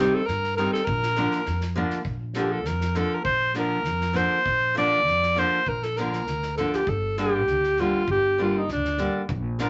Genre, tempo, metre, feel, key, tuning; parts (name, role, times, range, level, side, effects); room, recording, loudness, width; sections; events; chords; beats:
balkan folk, Balkan wedding band; 100 BPM; 2/4; swing 54% on 16ths; Bb major; A4 = 439 Hz
warm alto saxophone; melody; 0.0-9.7 s; D4 to D5; -26 LUFS; equal
nylon-string guitar; accompaniment; 0.0-9.7 s; D3 to Eb4; -30 LUFS; equal
upright bass; bass; 0.0-9.7 s; G1 to G2; -32 LUFS; equal
unplugged drum kit; percussion; 0.3-9.7 s; kick drum, snare drum; -39 LUFS; equal
moderate club reverb, RT60 0.6 s; nothing above 7.9 kHz; -24 LUFS; mono
0.0-2.1 A section; 2.1-9.7 B section
alto saxophone solo 2.1-9.7
0.0 Cm; 0.9 Bb; 6.9 Gm
0.29 | 0.88 1.48 | 2.08 2.67 | 3.27 3.87 | 4.47 5.07 | 5.68 6.28 | 6.88 7.49 | 8.09 8.70 | 9.30